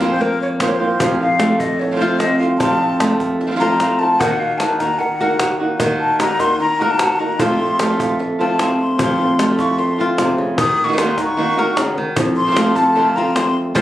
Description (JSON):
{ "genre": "flamenco", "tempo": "150 BPM", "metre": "4/4", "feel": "straight", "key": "F phrygian dominant", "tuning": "A4 = 440 Hz", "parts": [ { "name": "flamenco guitar", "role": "melody", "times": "0.0-13.8 s", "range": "F2 to Bb4", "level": "-18 LUFS", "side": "equal", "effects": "none" }, { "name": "breathy hollow jazz flute", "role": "second line", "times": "0.0-13.6 s", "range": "Bb4 to Eb6", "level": "-19 LUFS", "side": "left 2 dB", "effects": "none" }, { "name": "flamenco guitar", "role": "stabs", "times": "0.0-13.4 s", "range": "F2 to Gb4", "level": "-21 LUFS", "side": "right 2 dB", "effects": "none" }, { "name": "cajon", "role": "percussion", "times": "0.0-13.8 s", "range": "none", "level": "-23 LUFS", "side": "equal", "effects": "none" } ], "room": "light reverb", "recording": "recorded on a phone in the room, club reverb", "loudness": "-14 LUFS", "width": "side -13 dB against mid", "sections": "0.0-1.0 A section; 1.0-13.8 B section", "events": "flute solo 1.0-13.8", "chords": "0.0 Fsus4; 1.0 F; 4.2 Ebm; 7.4 F; 10.6 Ebm; 12.2 F" }